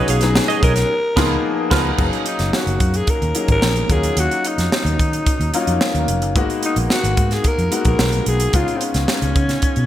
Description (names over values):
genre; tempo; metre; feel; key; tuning
polished 1980s jazz-funk pop; 110 BPM; 4/4; straight; F# major; A4 = 441 Hz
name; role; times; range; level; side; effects
breathy alto saxophone; melody; 0.0-9.9 s; B#3 to B4; -22 LUFS; left 1 dB; none
warm concert grand piano; accompaniment; 0.0-9.9 s; E#3 to G#4; -22 LUFS; left 3 dB; analog chorus
semi-hollow electric guitar; riff; 0.0-1.9 s; B3 to E#5; -24 LUFS; right 6 dB; analog chorus
vintage muted fingered electric bass; bass; 0.1-9.9 s; E#1 to D#3; -20 LUFS; equal; none
crisp fusion drum kit; drums; 0.1-9.9 s; crash cymbal, hi-hat, kick drum, snare drum; -20 LUFS; right 1 dB; gated reverb
room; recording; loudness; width
moderate plate reverb, RT60 1.8 s, studio reverb; bright 1980s-style digital production; -15 LUFS; side -12 dB against mid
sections
0.0-2.0 A section; 2.0-9.9 B section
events
band accent 0.9-2.0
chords
0.0 B69; 0.9 C#13; 2.0 F#6; 3.9 D#m9; 6.4 G#m7; 8.5 C#7